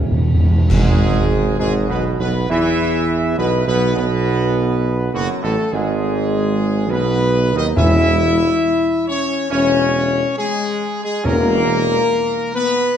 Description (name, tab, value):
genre	classical, ceremonial fanfare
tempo	68 BPM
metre	4/4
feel	straight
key	E major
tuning	A4 = 440 Hz
part	clear trombone section	sustained chords	0.0-11.6 s	F#2 to C#4	-25 LUFS	right 4 dB	none
part	warm tuba	bass	0.0-12.0 s	E1 to E2	-20 LUFS	right 4 dB	none
part	timpani	percussion	0.0-2.0, 7.8-12.5 s	E2	-18 LUFS	equal	none
part	bright trumpet section	melody	0.7-13.0 s	F#4 to E5	-22 LUFS	right 1 dB	none
part	mellow French horn section	sustained chords	0.7-13.0 s	F#3 to E4	-20 LUFS	left 4 dB	none
part	clash cymbals and concert bass drum	percussion	0.7-2.5 s	none	-23 LUFS	equal	none
room	wet scoring stage reverb, RT60 1.6 s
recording	dark, warm production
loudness	-15 LUFS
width	side -9 dB against mid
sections	0.7-13.0 A section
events	timpani fill 0.0-0.7; band accent 0.7-1.6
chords	0.0 A/E (rootless); 0.7 E/G#; 4.3 B; 7.8 C#m/E; 11.3 F#/E